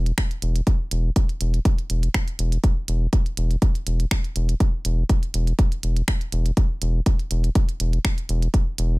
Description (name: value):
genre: minimal techno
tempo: 122 BPM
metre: 4/4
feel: swing 54% on 16ths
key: unclear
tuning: A4 = 440 Hz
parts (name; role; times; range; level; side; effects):
- round analog bass; bass; 0.0-9.0 s; E1; -21 LUFS; equal; sidechain pumping
- minimal click drum kit; drums; 0.1-8.9 s; finger snaps, hi-hat; -29 LUFS; right 2 dB; overdrive, small room ambience
- electronic kick drum; drums; 0.2-8.6 s; none; -20 LUFS; equal; small room ambience
room: little or no reverb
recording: none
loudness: -20 LUFS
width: side -23 dB against mid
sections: 0.0-9.0 A section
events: none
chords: none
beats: 0.18 | 0.67 1.16 1.65 2.14 | 2.64 3.13 3.62 4.11 | 4.60 5.09 5.59 6.08 | 6.57 7.06 7.55 8.05 | 8.54